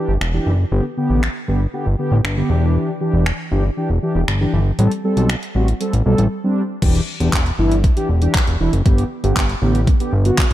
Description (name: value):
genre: dance-pop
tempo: 118 BPM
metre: 4/4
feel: straight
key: E minor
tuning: A4 = 437 Hz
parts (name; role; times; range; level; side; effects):
- mellow synth brass; accompaniment; 0.0-10.4 s; D3 to A4; -20 LUFS; equal; chorus
- fat analog bass; bass; 0.1-10.5 s; E1 to B1; -17 LUFS; equal; sidechain pumping
- pop drum kit; drums; 0.2-10.5 s; crash cymbal, finger snaps, handclaps, hi-hat, kick drum; -19 LUFS; equal; overdrive
room: light reverb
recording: dark, warm production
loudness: -15 LUFS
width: side -14 dB against mid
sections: 0.0-6.8 A section; 6.8-10.5 B section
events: break 6.3-6.8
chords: 0.0 Em7; 0.7 G; 2.5 Em7; 4.8 Am7; 6.8 Em7; 8.9 G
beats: 0.21 | 0.72 1.23 1.74 2.25 | 2.75 3.26 3.77 4.28 | 4.79 5.30 5.80 6.31 | 6.82 7.33 7.84 8.35 | 8.86 9.37 9.87 10.38